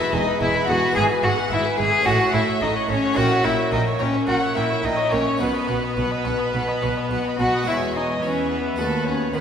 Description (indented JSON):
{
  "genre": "classical, baroque-style concerto movement with solo episodes",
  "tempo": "108 BPM",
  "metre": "4/4",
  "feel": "straight",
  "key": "E major",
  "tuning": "A4 = 438 Hz",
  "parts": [
    { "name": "rich cello", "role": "melody", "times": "0.0-9.4 s", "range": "A3 to G#4", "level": "-23 LUFS", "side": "left 1 dB", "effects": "none" },
    { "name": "warm chamber violin section", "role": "melody", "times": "0.0-9.4 s", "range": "E5 to B5", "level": "-32 LUFS", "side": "left 4 dB", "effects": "none" },
    { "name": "warm chamber violin section", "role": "second line", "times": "0.0-9.4 s", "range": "A4 to G#5", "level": "-26 LUFS", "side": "left 2 dB", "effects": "none" },
    { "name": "dark chamber viola section", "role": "accompaniment", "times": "0.0-9.4 s", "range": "G#4 to D#5", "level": "-29 LUFS", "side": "right 2 dB", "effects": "none" },
    { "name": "harpsichord", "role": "accompaniment", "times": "0.0-9.4 s", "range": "D#2 to F#4", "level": "-27 LUFS", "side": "left 1 dB", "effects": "none" },
    { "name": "rich chamber cello section", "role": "bass", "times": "0.1-9.4 s", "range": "D#2 to E3", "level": "-29 LUFS", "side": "right 3 dB", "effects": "none" },
    { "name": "rich chamber double bass section", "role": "bass", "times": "0.1-9.4 s", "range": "E1 to E2", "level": "-29 LUFS", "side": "right 2 dB", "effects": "none" }
  ],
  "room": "wet scoring stage reverb, RT60 1.9 s",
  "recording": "recorded in a church or concert hall",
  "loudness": "-19 LUFS",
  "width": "side -8 dB against mid",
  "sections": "0.0-7.7 A section; 7.7-9.4 A section",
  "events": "none",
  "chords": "0.0 E; 1.0 E/G#; 2.1 F#m7/A; 3.2 A#dim7; 5.4 B; 7.7 E; 8.8 B/D#"
}